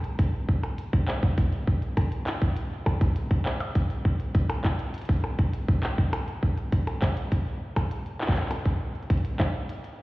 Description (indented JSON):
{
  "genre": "IDM",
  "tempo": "101 BPM",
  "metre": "4/4",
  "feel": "straight",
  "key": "none",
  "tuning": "none",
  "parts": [
    { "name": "glitchy drum kit", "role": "drums", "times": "0.0-10.0 s", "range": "cabasa, handclaps, hi-hat, percussion blips", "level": "-33 LUFS", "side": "equal", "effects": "small room ambience, digital delay" },
    { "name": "electronic kick drum", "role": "drums", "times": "0.2-9.5 s", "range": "none", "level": "-22 LUFS", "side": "equal", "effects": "small room ambience" }
  ],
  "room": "light reverb",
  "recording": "heard muffled through a wall, stone room reverb, EQ",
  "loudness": "-24 LUFS",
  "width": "side -20 dB against mid",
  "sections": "0.0-10.0 A section",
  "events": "break 9.7-10.0",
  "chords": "none",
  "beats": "0.19 0.78 | 1.38 1.97 2.57 3.16 | 3.75 4.35 4.94 5.54 | 6.13 6.72 7.32 7.91 | 8.51 9.10 9.69"
}